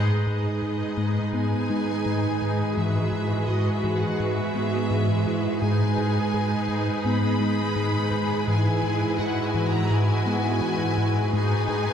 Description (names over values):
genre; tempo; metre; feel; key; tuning
cinematic, hybrid orchestral and electronic film score; 84 BPM; 4/4; straight; G# minor; A4 = 443 Hz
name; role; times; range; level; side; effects
clear symphonic violin section; melody; 0.0-11.9 s; D#5 to B5; -33 LUFS; left 3 dB; none
rich symphonic violin section; second line; 0.0-11.9 s; F#4 to B4; -33 LUFS; left 1 dB; none
rich symphonic viola section; accompaniment; 0.0-11.9 s; G#3 to F#4; -30 LUFS; right 2 dB; none
deep dark ambient pad; sustained chords; 0.5-11.9 s; G#3 to B4; -32 LUFS; right 1 dB; chorus, built-in reverb
harp-like synth pluck; arpeggios; 0.0-11.9 s; E3 to G#4; -32 LUFS; left 2 dB; chorus, tape echo
round analog bass; riff; 0.0-11.9 s; G#2 to G#3; -27 LUFS; left 1 dB; none
rich symphonic cello section; bass; 0.0-11.9 s; G#2; -28 LUFS; right 2 dB; none
room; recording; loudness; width
wet scoring stage reverb, RT60 1.8 s; heard from further back in the room; -22 LUFS; side -8 dB against mid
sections
0.0-11.9 A section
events
band accent 0.0-0.6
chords
0.0 G#m; 2.8 Eadd9/G#; 5.6 G#m; 8.5 Eadd9/G#; 11.3 G#m